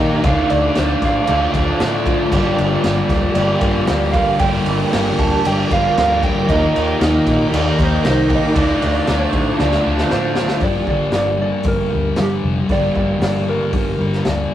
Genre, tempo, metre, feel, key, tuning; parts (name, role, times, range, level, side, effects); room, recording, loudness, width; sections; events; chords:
rock, shoegaze and dream pop; 116 BPM; 4/4; straight; G minor; A4 = 439 Hz
soft struck synth lead; melody; 0.0-14.5 s; G4 to A5; -22 LUFS; right 2 dB; chorus
evolving wavetable pad; sustained chords; 0.0-10.6 s; Eb4 to D6; -24 LUFS; right 1 dB; phaser, built-in reverb
overdriven semi-hollow guitar; riff; 0.0-14.5 s; G2 to G4; -24 LUFS; right 4 dB
thick fuzz guitar; riff; 0.0-14.5 s; G2 to Eb4; -20 LUFS; left 3 dB; distortion
tight distorted guitar; riff; 0.0-10.6 s; G2 to Eb4; -26 LUFS; equal; distortion
vintage muted fingered electric bass; bass; 0.0-14.5 s; F1 to Bb2; -23 LUFS; equal
raw garage drum kit; drums; 0.2-14.4 s; crash cymbal, hi-hat, kick drum, snare drum; -21 LUFS; equal
wet studio reverb, RT60 0.6 s; rough rehearsal-room recording, tube saturation; -14 LUFS; side -12 dB against mid
0.0-10.6 A section; 10.6-14.5 B section
drum fill 9.6-10.6
0.2 Dm7; 2.3 Gm7; 6.5 Ebmaj7; 8.6 Dm7; 10.6 Gm